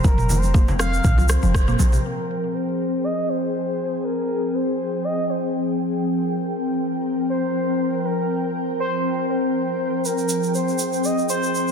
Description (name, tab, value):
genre	afro house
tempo	120 BPM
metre	4/4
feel	swing 54% on 16ths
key	F minor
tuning	A4 = 440 Hz
part	expressive synth lead	melody	0.0-11.7 s	Bb4 to F5	-26 LUFS	equal	chorus, ping-pong delay
part	ethereal airy pad	sustained chords	0.0-11.7 s	F3 to G5	-23 LUFS	left 1 dB	ensemble chorus, built-in reverb, sidechain pumping
part	mallet-like synth pluck	arpeggios	0.0-2.0 s	C3 to F4	-28 LUFS	equal	chorus, sidechain pumping, ping-pong delay
part	warm 808-style bass	bass	0.0-2.0 s	F1 to C2	-20 LUFS	equal	sidechain pumping
part	electronic kick drum	drums	0.0-1.7 s	none	-18 LUFS	equal	none
part	tube shaker	percussion	0.0-2.0, 10.1-11.7 s	none	-30 LUFS	right 4 dB	none
part	congas	percussion	0.1-1.9 s	none	-28 LUFS	left 2 dB	none
part	afro-pop drum kit	drums	0.2-1.8 s	rim click, toms	-26 LUFS	right 1 dB	soft clipping on snare
room	wet recital hall reverb, RT60 1.6 s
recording	dense, heavily limited modern master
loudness	-19 LUFS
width	side -6 dB against mid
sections	0.0-2.0 A section; 2.0-11.7 B section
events	band accent 1.5; filter sweep on ambient pad 2.0-11.7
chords	0.0 Fsus2; 2.0 Fmadd9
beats	| 0.05 0.55 1.05 1.55 | 2.05 2.55 3.05 3.55 | 4.05 4.55 5.05 5.55 | 6.05 6.55 7.05 7.55 | 8.05 8.55 9.05 9.55 | 10.05 10.55 11.05 11.55